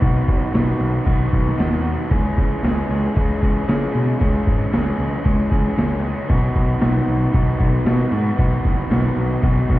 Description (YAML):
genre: indie rock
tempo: 115 BPM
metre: 4/4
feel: straight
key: B major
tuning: A4 = 445 Hz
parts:
  - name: overdriven electric guitar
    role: riff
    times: 0.0-9.8 s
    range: D#3 to G#4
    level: -22 LUFS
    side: equal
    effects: none
  - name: growling picked electric bass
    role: bass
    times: 0.0-9.8 s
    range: F#1 to C#3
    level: -20 LUFS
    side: equal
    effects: overdrive
  - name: boom bap sampler-style drum kit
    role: drums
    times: 0.0-9.8 s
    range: crash cymbal, kick drum, snare drum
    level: -21 LUFS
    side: equal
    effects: none
room: light reverb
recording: heard muffled through a wall, stone room reverb, EQ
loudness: -16 LUFS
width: side -16 dB against mid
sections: 0.0-9.8 A section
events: none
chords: 0.0 B; 2.1 C#m; 6.3 B